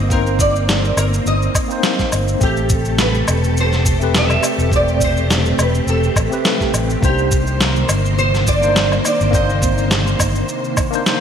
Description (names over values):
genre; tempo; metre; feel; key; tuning
sunset chillout; 104 BPM; 4/4; swing 55% on 16ths; unclear; A4 = 441 Hz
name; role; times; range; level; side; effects
nylon-string guitar; melody; 0.0-11.0 s; G4 to E5; -21 LUFS; right 1 dB; ensemble chorus, digital delay
bright tine electric piano; accompaniment; 0.0-11.2 s; A3 to C5; -22 LUFS; left 1 dB; medium stereo tremolo, auto-pan, digital delay
soft string machine; sustained chords; 0.0-11.2 s; C3 to C5; -24 LUFS; equal; ensemble chorus
fingered electric bass; bass; 0.0-10.4 s; E1 to C2; -18 LUFS; equal; none
electronic kick drum; drums; 0.1-10.9 s; none; -19 LUFS; equal; none
electronic shaker, snare drum and woodblock; drums; 0.1-11.2 s; none; -20 LUFS; equal; gated reverb
room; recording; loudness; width
moderate lush hall reverb, RT60 1.8 s; bright 1980s-style digital production; -14 LUFS; side -8 dB against mid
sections
0.0-11.2 A section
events
none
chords
0.0 Cm9; 2.4 Am9; 7.0 Cm9